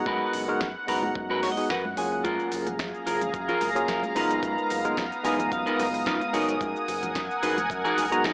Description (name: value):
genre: nu-disco, nu disco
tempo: 110 BPM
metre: 4/4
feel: swing 54% on 16ths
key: unclear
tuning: A4 = 439 Hz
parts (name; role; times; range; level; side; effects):
- tine electric piano; accompaniment; 0.0-8.3 s; F#3 to A#5; -29 LUFS; equal; slow stereo tremolo, sidechain pumping, tape echo
- lush unison pad; sustained chords; 0.0-8.3 s; B3 to D#6; -29 LUFS; equal; chorus, vintage 12-bit sampler grit, sidechain pumping
- fingered electric bass with an envelope filter; bass; 0.0-8.3 s; F#1 to F#2; -39 LUFS; equal; none
- clean electric guitar; riff; 0.1-8.3 s; D#4 to G#5; -28 LUFS; equal; analog chorus
- electronic kick drum; drums; 0.1-8.3 s; none; -38 LUFS; equal; small room ambience
- congas; percussion; 0.1-8.1 s; none; -41 LUFS; equal; none
- pop drum kit; drums; 0.3-8.3 s; hi-hat, shaker, snare drum; -35 LUFS; equal; small room ambience
room: light reverb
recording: AM radio sound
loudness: -24 LUFS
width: side -40 dB against mid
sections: 0.0-8.3 A section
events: filter sweep on tine electric piano 0.0-8.3; clean electric guitar fill 1.2-2.2, 5.0-6.6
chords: 0.1 G#m9/F#; 2.2 F#maj9; 4.2 G#m13/F#; 6.3 G#m9/F#